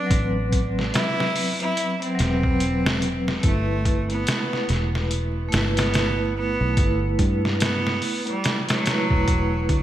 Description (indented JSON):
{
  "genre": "trip hop",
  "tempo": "72 BPM",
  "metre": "4/4",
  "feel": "swing 59% on 16ths",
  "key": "unclear",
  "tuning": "A4 = 440 Hz",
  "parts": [
    { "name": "bright cello", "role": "melody", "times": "0.0-9.8 s", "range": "F#3 to E4", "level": "-27 LUFS", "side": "right 1 dB", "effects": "dub echo" },
    { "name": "vibraphone with hard mallets", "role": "accompaniment", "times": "0.0-9.8 s", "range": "F#3 to B4", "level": "-26 LUFS", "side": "equal", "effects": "tremolo, vintage 12-bit sampler grit, tape echo" },
    { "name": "fingered electric bass", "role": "bass", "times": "0.1-9.8 s", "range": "E1 to G2", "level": "-25 LUFS", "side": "equal", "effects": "none" },
    { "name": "trip hop sampler-style drum kit", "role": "drums", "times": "0.1-9.8 s", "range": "hi-hat, kick drum, snare drum", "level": "-24 LUFS", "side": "equal", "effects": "gated reverb" }
  ],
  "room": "light reverb",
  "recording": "bright 1980s-style digital production, vinyl crackle",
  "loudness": "-20 LUFS",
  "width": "side -12 dB against mid",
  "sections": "0.0-9.8 A section",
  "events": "none",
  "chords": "0.0 Am69; 3.4 G69"
}